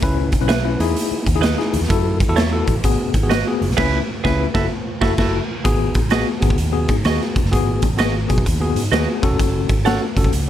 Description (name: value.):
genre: uptempo 1960s-style soul.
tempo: 128 BPM.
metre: 4/4.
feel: swing 64% on 8ths.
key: unclear.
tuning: A4 = 440 Hz.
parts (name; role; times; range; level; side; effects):
tine electric piano; accompaniment; 0.0-10.3 s; B3 to B4; -22 LUFS; left 5 dB; medium stereo tremolo, plate reverb.
vintage muted fingered electric bass; bass; 0.0-10.5 s; E1 to G#2; -21 LUFS; equal; none.
raw garage drum kit; drums; 0.0-10.5 s; crash cymbal, hi-hat, kick drum, snare drum; -19 LUFS; equal; none.
clean electric guitar; stabs; 0.5-10.0 s; F#4 to F#5; -22 LUFS; right 9 dB; plate reverb.
room: little or no reverb.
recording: none.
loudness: -16 LUFS.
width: side -11 dB against mid.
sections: 0.0-5.7 A section; 5.7-10.5 B section.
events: band accent 3.8-5.7.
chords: 0.0 C#m7; 0.7 Emaj7; 1.9 F#m7; 2.8 G#m7; 3.8 C#m7; 4.5 F#m7; 5.7 G#m7; 9.2 F#m.